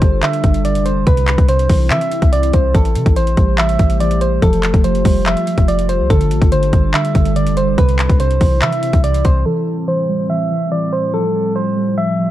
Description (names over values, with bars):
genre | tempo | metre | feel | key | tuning
hip hop, trap | 143 BPM | 4/4 | half-time | A minor | A4 = 443 Hz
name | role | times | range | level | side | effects
soft electric-piano-like synth keys | melody | 0.0-12.3 s | A4 to E5 | -19 LUFS | right 1 dB | chorus, low-pass filter, tape echo
muted felt-like synth keys | accompaniment | 0.0-12.3 s | C3 to G3 | -20 LUFS | right 2 dB | chorus, low-pass filter
glassy FM pad | sustained chords | 0.0-12.3 s | A2 to C5 | -23 LUFS | left 1 dB | ensemble chorus, built-in reverb, low-pass filter
warm 808-style bass | bass | 0.0-9.4 s | F1 to E3 | -17 LUFS | equal | none
trap drum kit | drums | 0.0-9.3 s | handclaps, hi-hat, kick drum | -15 LUFS | equal | none
room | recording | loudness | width
little or no reverb | dry, gritty hardware recording, cassette tape | -12 LUFS | side -14 dB against mid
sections
0.0-9.5 A section; 9.5-12.3 B section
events
filter sweep 9.5-12.3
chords
0.0 Gsus2; 1.1 Cmaj7; 2.7 Am7; 4.4 Fadd9; 6.1 Gsus2; 7.8 Cmaj7; 9.5 Am7; 11.1 Fadd9